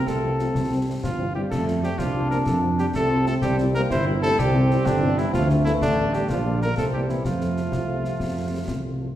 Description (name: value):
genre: military-style march for wind band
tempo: 126 BPM (dotted quarters)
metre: 6/8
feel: straight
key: F major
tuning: A4 = 440 Hz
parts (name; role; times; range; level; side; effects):
- warm cornet; melody; 0.0-9.0 s; D4 to C5; -28 LUFS; equal; none
- warm euphonium; second line; 0.0-9.0 s; D3 to C4; -30 LUFS; right 1 dB; none
- warm trombone section; sustained chords; 0.0-8.9 s; A3 to E4; -28 LUFS; right 2 dB; none
- mellow tuba; bass; 0.1-9.1 s; G1 to F2; -24 LUFS; equal; none
- concert snare drum, concert bass drum and clash cymbals; drums; 0.1-8.8 s; none; -31 LUFS; left 1 dB; none
- dark French horn section; accompaniment; 0.2-9.1 s; D3 to F4; -31 LUFS; left 3 dB; none
room: wet recital hall reverb, RT60 1.6 s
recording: recorded in a church or concert hall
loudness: -20 LUFS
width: side -12 dB against mid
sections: 0.0-9.2 A section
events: none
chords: 0.0 F/C; 0.6 C; 1.5 F; 3.4 C; 5.3 Dm; 6.3 Bb; 6.8 C7; 7.2 F